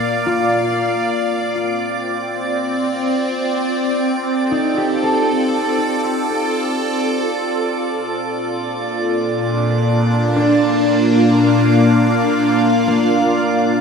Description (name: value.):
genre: ambient.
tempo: free time.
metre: none.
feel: none.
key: F mixolydian.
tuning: A4 = 440 Hz.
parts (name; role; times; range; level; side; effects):
evolving wavetable pad; sustained chords; 0.0-13.8 s; Bb2 to F5; -16 LUFS; equal; phaser, built-in reverb.
drifting glass-harmonics texture; texture; 0.0-13.8 s; D5 to D6; -25 LUFS; right 5 dB; chorus, built-in reverb.
concert harp; arpeggios; 0.3-13.8 s; Bb3 to A4; -23 LUFS; left 2 dB; ping-pong delay.
room: wet cathedral reverb, RT60 5.5 s.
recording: in a vast, echoing space.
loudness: -15 LUFS.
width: side -6 dB against mid.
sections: 0.0-13.8 A section.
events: none.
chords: 0.0 Bb; 1.1 F; 7.9 Bb.